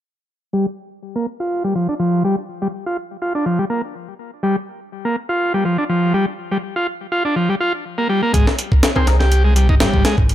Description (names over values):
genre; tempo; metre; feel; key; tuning
breakbeat, breaks; 123 BPM; 4/4; swing 54% on 16ths; G phrygian; A4 = 440 Hz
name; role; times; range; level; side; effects
overdriven combo organ; riff; 0.5-10.2 s; F3 to G4; -18 LUFS; equal; low-pass filter, ping-pong delay
overdriven picked electric bass; bass; 8.3-10.3 s; Ab1 to C2; -15 LUFS; equal; none
breakbeat sampler-style drum kit; drums; 8.3-10.3 s; hi-hat, kick drum, snare drum; -15 LUFS; equal; none
filtered dub chord stab; stabs; 9.0-9.2 s; C4 to Bb4; -26 LUFS; left 2 dB; lush chorus, ping-pong delay
room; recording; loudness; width
digital ambience; none; -16 LUFS; side -12 dB against mid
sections
0.5-10.3 A section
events
filter sweep on transistor combo organ 0.5-10.3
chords
0.5 Gm; 8.3 Ab